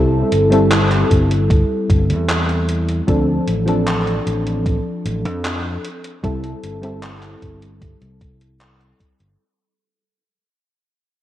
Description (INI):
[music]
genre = vaporwave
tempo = 76 BPM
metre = 4/4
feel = straight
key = unclear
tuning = A4 = 440 Hz
[part]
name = mellow FM electric piano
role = accompaniment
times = 0.0-9.4 s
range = F3 to A4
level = -19 LUFS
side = left 1 dB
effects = analog chorus, analog delay
[part]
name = fingered electric bass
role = bass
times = 0.0-9.3 s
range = G1 to F2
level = -20 LUFS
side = equal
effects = none
[part]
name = gated 80s digital drum machine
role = drums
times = 0.3-9.4 s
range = handclaps, hi-hat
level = -24 LUFS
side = equal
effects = gated reverb, overdrive
[part]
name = electronic kick drum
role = drums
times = 1.1-9.2 s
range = none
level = -17 LUFS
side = equal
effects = overdrive
[sound]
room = moderate lush hall reverb, RT60 2.4 s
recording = dreamy mix soaked in reverb, cassette tape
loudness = -15 LUFS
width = side -12 dB against mid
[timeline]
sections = 0.0-9.4 A section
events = fade-out 1.0-9.4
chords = 0.0 C6; 3.1 Dm7; 5.8 C6